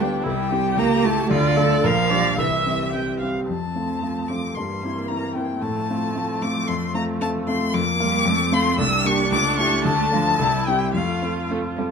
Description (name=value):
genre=quick classical-period movement for piano quartet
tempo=112 BPM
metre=2/4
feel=straight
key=F major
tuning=A4 = 439 Hz
part: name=rich violin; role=melody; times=0.0-11.5 s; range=D5 to E6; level=-24 LUFS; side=left 4 dB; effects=none
part: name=warm cello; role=second line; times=0.0-11.8 s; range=D3 to Bb3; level=-27 LUFS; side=right 7 dB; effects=none
part: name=warm grand piano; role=accompaniment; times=0.0-11.9 s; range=Bb1 to A4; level=-23 LUFS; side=left 2 dB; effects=none
part: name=warm viola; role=accompaniment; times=0.0-11.8 s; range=A3 to G5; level=-28 LUFS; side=right 4 dB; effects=none
room=light reverb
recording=lossy compression artefacts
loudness=-19 LUFS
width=side -6 dB against mid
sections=0.0-3.5 A section; 3.5-11.9 B section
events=none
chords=0.2 C; 0.8 A7/C#; 1.3 Dm; 1.8 Gm7/Bb; 2.4 C; 3.5 F; 4.6 C7/G; 5.6 F/A; 6.7 F; 7.7 Bb/F; 8.3 F; 8.8 C9; 9.3 A7/C#; 9.9 Dm; 10.4 C; 10.9 F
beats=| 0.25 0.78 | 1.31 1.84 | 2.39 2.94 | 3.48 4.02 | 4.55 5.09 | 5.62 6.16 | 6.69 7.22 | 7.75 8.27 | 8.80 9.32 | 9.86 10.39 | 10.94 11.49